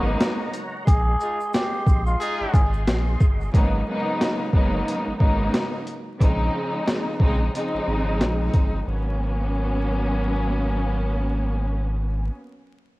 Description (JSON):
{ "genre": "hip hop, boom-bap hip-hop", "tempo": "90 BPM", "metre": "4/4", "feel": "swing 60% on 16ths", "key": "G# dorian", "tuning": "A4 = 441 Hz", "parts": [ { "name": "trumpet with cup mute", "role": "melody", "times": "0.0-2.7 s", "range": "E#4 to G#4", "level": "-29 LUFS", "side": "equal", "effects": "high-pass filter, low-pass filter, cassette tape, tape echo" }, { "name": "warm studio string section", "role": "accompaniment", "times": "0.0-12.3 s", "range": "G#2 to D#4", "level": "-25 LUFS", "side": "equal", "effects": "high-pass filter, low-pass filter, cassette tape" }, { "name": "tonewheel organ", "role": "sustained chords", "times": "0.0-3.5 s", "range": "G#3 to B#5", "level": "-35 LUFS", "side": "equal", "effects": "chorus vibrato, slow rotary speaker, high-pass filter, low-pass filter, cassette tape" }, { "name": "warm sub bass", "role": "bass", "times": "0.0-12.3 s", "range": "F#1 to A#1", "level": "-24 LUFS", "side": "equal", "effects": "none" }, { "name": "boom bap sampler-style drum kit", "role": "drums", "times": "0.2-8.7 s", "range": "hi-hat, kick drum, shaker, snare drum", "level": "-21 LUFS", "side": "equal", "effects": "overdrive, cassette tape" }, { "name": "egg shaker", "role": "percussion", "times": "0.2-3.5 s", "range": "none", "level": "-57 LUFS", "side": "left 4 dB", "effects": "none" }, { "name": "bright trumpet section", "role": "stabs", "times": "1.2-2.7 s", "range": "D#4 to G#4", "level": "-32 LUFS", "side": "left 1 dB", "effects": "high-pass filter, low-pass filter, cassette tape, tape echo" } ], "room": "studio reverb", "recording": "home recording on cassette, vinyl crackle", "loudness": "-20 LUFS", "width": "side -20 dB against mid", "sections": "0.0-3.5 A section; 3.5-8.9 B section; 8.9-11.5 C section", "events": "none", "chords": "0.0 G#m11; 0.9 A#9sus4; 3.5 G#m11; 6.2 A#m11; 8.9 G#m11" }